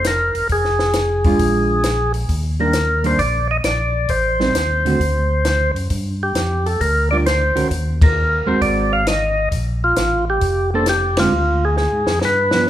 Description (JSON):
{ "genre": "soul jazz organ trio", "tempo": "133 BPM", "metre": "4/4", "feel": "swing 68% on 8ths", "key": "Bb major", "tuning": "A4 = 438 Hz", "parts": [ { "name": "percussive tonewheel organ", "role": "melody", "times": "0.0-12.7 s", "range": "F4 to F5", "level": "-18 LUFS", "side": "equal", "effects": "slow rotary speaker" }, { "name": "hollow-body jazz guitar", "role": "accompaniment", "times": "0.0-12.7 s", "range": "D3 to C5", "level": "-22 LUFS", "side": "right 3 dB", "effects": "none" }, { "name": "tonewheel organ", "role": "bass", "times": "0.0-12.7 s", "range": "F1 to Ab2", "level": "-21 LUFS", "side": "equal", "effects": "overdrive, chorus vibrato, slow rotary speaker" }, { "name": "compact cocktail drum kit", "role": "drums", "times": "0.0-12.7 s", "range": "hi-hat, kick drum, ride cymbal, snare drum", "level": "-20 LUFS", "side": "left 1 dB", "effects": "none" } ], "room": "moderate recital hall reverb, RT60 1.4 s", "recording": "recorded in a church or concert hall", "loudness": "-15 LUFS", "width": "side -12 dB against mid", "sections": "0.0-12.7 A section", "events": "band accent 7.9, 11.1; drum fill 11.8-12.7", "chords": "0.5 Fm; 1.4 Bb7; 2.3 Ebmaj7; 4.1 Am7b5; 5.0 D7; 5.9 Gm7; 7.7 Ebm; 8.6 Ab9; 9.5 Bbmaj9; 11.3 Ddim" }